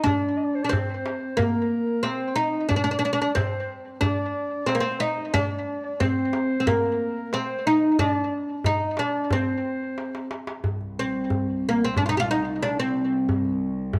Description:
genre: Turkish makam ensemble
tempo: 91 BPM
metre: 4/4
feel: straight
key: unclear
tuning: A4 = 440 Hz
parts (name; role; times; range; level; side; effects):
- oud; melody; 0.0-13.5 s; Bb3 to G4; -26 LUFS; equal; tape echo
- mellow clarinet; second line; 0.0-10.3 s; Bb4 to Eb5; -34 LUFS; equal; none
- darbuka; percussion; 0.1-14.0 s; none; -30 LUFS; equal; none
- muted symphonic cello section; drone; 10.6-14.0 s; C2; -34 LUFS; equal; none
room: moderate echo chamber reverb, RT60 1.4 s, small room ambience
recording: none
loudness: -25 LUFS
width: mono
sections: 0.0-10.6 A section; 10.6-14.0 B section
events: drum fill 10.0-10.6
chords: none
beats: | 0.06 0.72 1.38 2.04 | 2.70 3.36 4.02 4.68 | 5.34 6.01 6.67 7.33 | 7.99 8.65 9.31 9.97 | 10.63 11.30 11.96 12.62 | 13.28 13.95

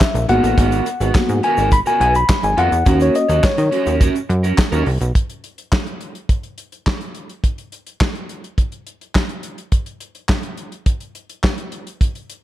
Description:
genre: early-eighties boogie funk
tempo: 105 BPM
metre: 4/4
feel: straight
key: unclear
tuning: A4 = 439 Hz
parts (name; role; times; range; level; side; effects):
- mellow tine electric piano; accompaniment; 0.0-4.0 s; A#3 to B5; -17 LUFS; left 2 dB; none
- electric guitar at the edge of break-up; riff; 0.0-5.0 s; B3 to C#5; -22 LUFS; right 6 dB; lush chorus
- modern studio drum kit; drums; 0.0-12.4 s; handclaps, hi-hat, kick drum, snare drum; -18 LUFS; equal; gated reverb
- egg shaker; percussion; 0.0-5.1 s; none; -40 LUFS; left 6 dB; none
- plucky analog bass; bass; 0.1-5.1 s; G#1 to D#3; -18 LUFS; right 1 dB; none
room: studio reverb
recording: none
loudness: -16 LUFS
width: side -13 dB against mid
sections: 0.0-5.2 A section; 5.2-12.4 B section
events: tine electric piano solo 0.0-5.2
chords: 0.3 G#m9; 2.9 D#m7; 5.2 N.C.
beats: 0.01 | 0.58 1.15 1.72 2.29 | 2.87 3.44 4.01 4.58 | 5.15 5.72 6.29 6.87 | 7.44 8.01 8.58 9.15 | 9.72 10.29 10.87 11.44 | 12.01

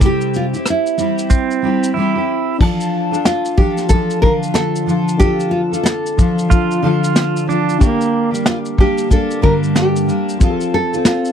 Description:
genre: acoustic pop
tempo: 92 BPM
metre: 4/4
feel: swing 60% on 16ths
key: D minor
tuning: A4 = 440 Hz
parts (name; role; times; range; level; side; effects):
- nylon-string guitar; melody; 0.0-11.3 s; E4 to Bb4; -19 LUFS; right 1 dB; none
- fingerpicked steel-string acoustic guitar; accompaniment; 0.0-11.3 s; G2 to A4; -18 LUFS; left 1 dB; double-tracked left and right
- vintage brush drum kit; drums; 0.0-11.3 s; crash cymbal, kick drum, rim click, shaker, snare drum; -15 LUFS; equal; none
- pedal steel guitar; second line; 1.3-2.6, 6.5-8.3 s; Bb3 to F4; -19 LUFS; right 9 dB; none
- dark upright piano; accompaniment; 2.6-11.3 s; Bb3 to A5; -25 LUFS; left 6 dB; none
room: little or no reverb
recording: dry, close 1970s-style studio recording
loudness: -13 LUFS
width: side -8 dB against mid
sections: 0.0-2.6 A section; 2.6-11.3 B section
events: none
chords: 0.0 C; 2.6 Dm; 7.8 Gm; 10.4 F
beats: | 0.01 0.66 1.31 1.96 | 2.61 3.26 3.91 4.56 | 5.21 5.86 6.51 7.16 | 7.81 8.46 9.11 9.76 | 10.41 11.06

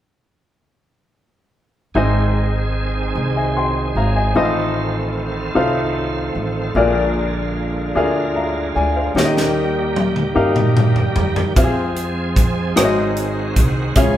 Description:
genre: slow gospel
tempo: 50 BPM (dotted quarters)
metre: 6/8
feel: straight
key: Ab major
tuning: A4 = 438 Hz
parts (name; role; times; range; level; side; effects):
- bright tonewheel organ; sustained chords; 1.9-14.2 s; D3 to Ab4; -24 LUFS; right 3 dB; slow rotary speaker, chorus vibrato
- upright bass; bass; 1.9-14.2 s; Ab1 to G2; -22 LUFS; right 1 dB; none
- clear baby grand piano; accompaniment; 2.0-14.2 s; Ab2 to C6; -19 LUFS; left 2 dB; none
- tight funk drum kit; drums; 9.2-14.1 s; hi-hat, kick drum, rim click, snare drum, toms; -17 LUFS; equal; none
room: moderate large studio reverb, RT60 1.2 s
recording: band playing live in one room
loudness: -16 LUFS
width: side -12 dB against mid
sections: 2.0-14.2 A section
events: drum fill 9.2-11.6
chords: 2.0 Ab; 4.4 F7/A; 6.8 Bb7; 9.2 Eb; 11.6 Fm; 12.8 Ab7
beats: | 1.95 3.15 | 4.36 5.56 | 6.76 7.96 | 9.16 10.36 | 11.56 12.76 | 13.96

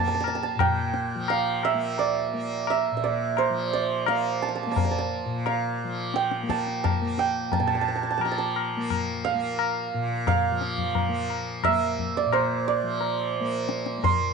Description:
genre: indian classical, Hindustani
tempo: 87 BPM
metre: 4/4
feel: straight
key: Bb raga yaman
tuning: A4 = 441 Hz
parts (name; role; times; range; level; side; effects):
- santur; melody; 0.0-14.3 s; C5 to C6; -26 LUFS; right 10 dB; none
- tanpura; drone; 0.0-14.3 s; Bb2 to Bb3; -30 LUFS; left 3 dB; none
- tabla; percussion; 0.2-14.3 s; none; -28 LUFS; left 8 dB; none
room: light reverb, small room reverb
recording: 1960s-style stereo with parts hard left and right, nothing above 10.5 kHz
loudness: -23 LUFS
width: side -5 dB against mid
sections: 0.0-14.3 A section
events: none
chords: none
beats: 0.60 1.29 | 1.99 2.68 3.38 4.07 | 4.76 5.45 6.14 6.83 | 7.52 8.21 8.90 9.59 | 10.27 10.96 11.64 12.32 | 13.01 13.69

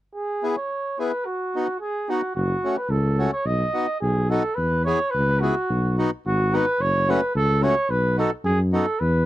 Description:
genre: alpine folk, alpine dance band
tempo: 108 BPM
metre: 2/4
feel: rubato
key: E major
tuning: A4 = 439 Hz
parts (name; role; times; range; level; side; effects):
- mellow trumpet; melody; 0.1-9.3 s; F#4 to D#5; -23 LUFS; right 2 dB; none
- accordion; accompaniment; 0.4-8.9 s; A3 to G#4; -24 LUFS; left 2 dB; none
- dark tuba; bass; 2.4-9.3 s; F#1 to F#2; -22 LUFS; left 1 dB; none
room: little or no reverb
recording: dry, close 1970s-style studio recording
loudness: -20 LUFS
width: side -14 dB against mid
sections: 0.2-4.6 A section; 4.6-9.3 B section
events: none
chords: 0.2 E; 1.3 B; 2.4 F#m; 3.5 B; 4.6 E; 5.7 B; 6.8 F#m; 7.9 B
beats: | 0.15 0.71 | 1.27 1.82 | 2.36 2.91 | 3.46 4.02 | 4.58 5.14 | 5.70 6.25 | 6.80 7.35 | 7.90 8.46 | 9.02

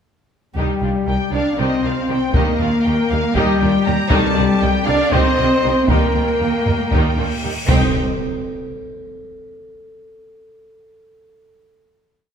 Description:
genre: cinematic, epic orchestral film score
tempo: 236 BPM (eighths)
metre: 7/8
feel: straight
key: C minor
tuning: A4 = 440 Hz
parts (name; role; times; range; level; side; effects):
- rich symphonic violin section; second line; 0.6-8.0 s; Bb3 to G4; -26 LUFS; left 2 dB; none
- rich symphonic viola section; accompaniment; 0.6-8.0 s; Eb3 to Eb4; -27 LUFS; right 3 dB; none
- mellow French horn section; sustained chords; 0.6-7.9 s; G3 to D4; -22 LUFS; left 5 dB; none
- dark trumpet section; stabs; 0.6-7.9 s; G4 to D5; -23 LUFS; equal; none
- warm symphonic cello section; bass; 0.6-8.0 s; G3 to D4; -22 LUFS; right 1 dB; none
- warm symphonic double bass section; bass; 0.6-8.0 s; C2 to Eb2; -24 LUFS; right 4 dB; none
- taiko ensemble; drums; 0.6-8.7 s; none; -20 LUFS; equal; none
- rich symphonic violin section; melody; 1.1-8.0 s; Eb5 to Bb5; -26 LUFS; left 3 dB; none
- timpani; percussion; 4.1-4.8, 7.7-7.9 s; C3; -28 LUFS; right 1 dB; none
- cymbal swell and impact; sound effects; 7.1-9.5 s; none; -30 LUFS; equal; none
room: wet scoring stage reverb, RT60 1.7 s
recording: none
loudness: -15 LUFS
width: side -7 dB against mid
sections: 0.6-7.7 theme; 7.7-9.5 final chord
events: cymbal swell 7.1-7.7; impact 7.7-9.5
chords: 0.6 Cm; 2.3 Eb; 4.1 Cm; 5.9 Eb; 7.7 Cm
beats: | 0.57 0.82 1.08 1.33 1.59 1.84 2.10 | 2.35 2.60 2.85 3.10 3.36 3.61 3.86 | 4.11 4.36 4.62 4.87 5.12 5.38 5.63 | 5.89 6.15 6.41 6.66 6.92 7.18 7.44 | 7.69 7.95 8.20 8.45 8.71 8.96 9.21

